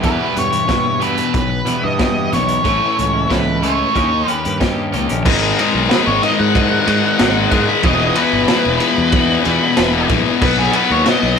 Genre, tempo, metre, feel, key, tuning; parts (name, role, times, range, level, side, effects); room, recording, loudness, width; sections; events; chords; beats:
quiet-loud alternative rock; 93 BPM; 4/4; straight; G# minor from 5.3 s; A4 = 440 Hz
twelve-string electric guitar; arpeggios; 0.0-5.2 s; E2 to G4; -23 LUFS; left 4 dB
scooped high-gain guitar; riff; 0.0-5.2 s; E2 to D#4; -22 LUFS; right 2 dB; distortion
fuzz fingered electric bass; bass; 0.0-11.4 s; E1 to G#2; -21 LUFS; right 1 dB; overdrive
raw garage drum kit; drums; 0.0-11.2 s; crash cymbal, hi-hat, kick drum, ride cymbal, snare drum; -19 LUFS; right 1 dB
octave-fuzz lead guitar; melody; 0.1-11.4 s; G#4 to B5; -19 LUFS; equal; distortion
high-gain distorted guitar; riff; 5.3-11.4 s; E2 to B3; -15 LUFS; left 6 dB; distortion
moderate small room ambience, RT60 0.5 s; rough rehearsal-room recording; -13 LUFS; side -6 dB against mid
0.0-5.3 A section; 5.3-11.4 B section
lead electric guitar solo 5.3-11.4
0.0 Em; 2.7 A; 4.0 D#7; 5.3 G#5; 7.8 E5; 10.4 B
| 0.05 0.70 1.35 2.00 | 2.65 3.31 3.96 4.61 | 5.25 5.90 6.55 7.19 | 7.84 8.48 9.13 9.77 | 10.41 11.06